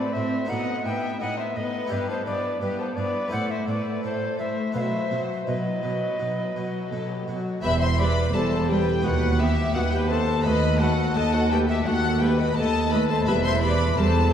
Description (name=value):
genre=classical, baroque-style concerto movement with solo episodes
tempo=85 BPM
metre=4/4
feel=straight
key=E minor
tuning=A4 = 440 Hz
part: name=alto recorder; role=melody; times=0.0-14.3 s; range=F#4 to G5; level=-28 LUFS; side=left 2 dB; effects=none
part: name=warm studio violin section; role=melody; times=0.0-14.3 s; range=D#4 to C6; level=-31 LUFS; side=left 5 dB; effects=none
part: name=rich studio violin section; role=second line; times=0.0-14.3 s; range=G4 to E5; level=-30 LUFS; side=left 3 dB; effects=none
part: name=harpsichord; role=accompaniment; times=0.0-14.3 s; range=D#2 to C5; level=-35 LUFS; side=right 1 dB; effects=none
part: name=rich symphonic viola section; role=accompaniment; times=0.0-14.1 s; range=F#3 to C4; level=-30 LUFS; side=equal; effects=none
part: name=dark chamber cello section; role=bass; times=0.2-14.3 s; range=D#2 to B2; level=-28 LUFS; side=right 2 dB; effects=none
part: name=warm studio double bass section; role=bass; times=7.6-14.3 s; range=E1 to D#2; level=-26 LUFS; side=right 2 dB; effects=none
room=wet church reverb, RT60 2.8 s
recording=dark, warm production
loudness=-22 LUFS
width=side -9 dB against mid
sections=0.0-7.6 A section; 7.6-14.3 B section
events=none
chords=0.5 B7/A; 1.9 Em/G; 3.3 Am; 4.8 B; 7.6 Em; 9.1 B/D#; 10.5 B7/D#; 13.3 Em